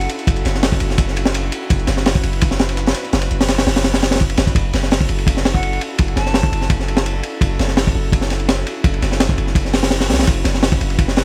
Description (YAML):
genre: drum and bass, jungle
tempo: 168 BPM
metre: 4/4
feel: straight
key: F# minor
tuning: A4 = 440 Hz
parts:
  - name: hollow silver concert flute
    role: melody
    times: 0.0-0.1, 5.5-6.7 s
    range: F#5 to A5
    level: -32 LUFS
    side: equal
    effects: vintage 12-bit sampler grit, dub echo
  - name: airy breathy pad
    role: sustained chords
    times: 0.0-11.2 s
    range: C#4 to B4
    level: -30 LUFS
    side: equal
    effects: chorus, vintage 12-bit sampler grit
  - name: long sustained 808-style bass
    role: bass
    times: 0.0-11.2 s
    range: F#1 to C#2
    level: -23 LUFS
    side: equal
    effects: tube saturation
  - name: crunchy breakbeat drum kit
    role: drums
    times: 0.0-11.2 s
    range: hi-hat, kick drum, ride cymbal, snare drum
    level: -19 LUFS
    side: equal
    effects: none
  - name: dusty soul sampler-style drum kit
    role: drums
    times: 0.0-4.6 s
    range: hi-hat, snare drum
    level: -35 LUFS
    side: equal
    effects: none
room: studio ambience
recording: none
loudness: -17 LUFS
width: mono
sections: 0.0-4.6 A section; 4.6-11.2 A section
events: drop 0.0-4.6, 4.6-11.2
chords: 0.0 F#m7